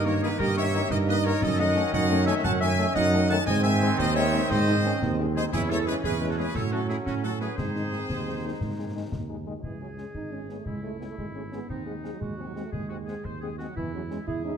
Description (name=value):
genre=military-style march for wind band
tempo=117 BPM (dotted quarters)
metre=6/8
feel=straight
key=C# minor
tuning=A4 = 438 Hz
part: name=clear trumpet section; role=melody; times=0.0-14.5 s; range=F#4 to A5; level=-32 LUFS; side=equal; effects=none
part: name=warm euphonium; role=second line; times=0.0-14.6 s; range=E3 to G#4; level=-32 LUFS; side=right 3 dB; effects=none
part: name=warm woodwind section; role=second line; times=0.0-14.6 s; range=C#4 to F#5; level=-32 LUFS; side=left 2 dB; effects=none
part: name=bright trombone section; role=sustained chords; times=0.0-9.5 s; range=D#3 to D#4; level=-33 LUFS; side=right 2 dB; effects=none
part: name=dark tuba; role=bass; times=0.0-14.6 s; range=G#1 to A2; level=-28 LUFS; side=right 2 dB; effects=none
part: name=mellow French horn section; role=accompaniment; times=0.1-14.5 s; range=D#3 to G#4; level=-35 LUFS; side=left 6 dB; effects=none
part: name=concert snare drum, concert bass drum and clash cymbals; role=drums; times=0.4-14.4 s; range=none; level=-36 LUFS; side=left 2 dB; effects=none
room=moderate recital hall reverb, RT60 1.4 s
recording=none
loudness=-24 LUFS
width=side -7 dB against mid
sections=0.0-9.6 A section; 9.6-14.6 B section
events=none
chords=0.0 D#/G; 1.4 D#m7b5/F#; 3.5 G#; 5.5 C#m/E; 6.6 F#m/A; 7.6 G#; 9.6 C#m; 11.7 G#7/D#; 13.8 C#m/E